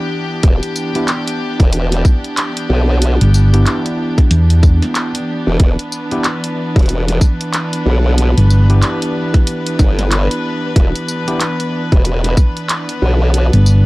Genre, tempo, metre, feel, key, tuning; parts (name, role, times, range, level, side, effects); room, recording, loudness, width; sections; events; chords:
glitch hop; 93 BPM; 4/4; swing 60% on 16ths; E minor pentatonic; A4 = 440 Hz
warm chamber string section; sustained chords; 0.0-13.9 s; E3 to B4; -20 LUFS; equal; sidechain pumping
overdriven tine electric piano; stabs; 0.0-11.4 s; B3 to G4; -23 LUFS; equal; sidechain pumping, tape echo
formant-sweep wobble bass; bass; 0.4-13.5 s; E1 to B1; -14 LUFS; equal; chorus, overdrive
drum and bass drum kit; drums; 0.4-13.8 s; handclaps, hi-hat, snare drum, tambourine; -20 LUFS; equal
electronic kick drum; drums; 0.4-12.5 s; -10 LUFS; equal
hollow-body short-scale fingered electric bass; bass; 3.2-8.8, 13.5-13.9 s; G1 to E2; -9 LUFS; equal
little or no reverb; dry, gritty hardware recording, transformer saturation, cassette tape; -12 LUFS; side -21 dB against mid
0.0-13.9 A section
0.0 Em7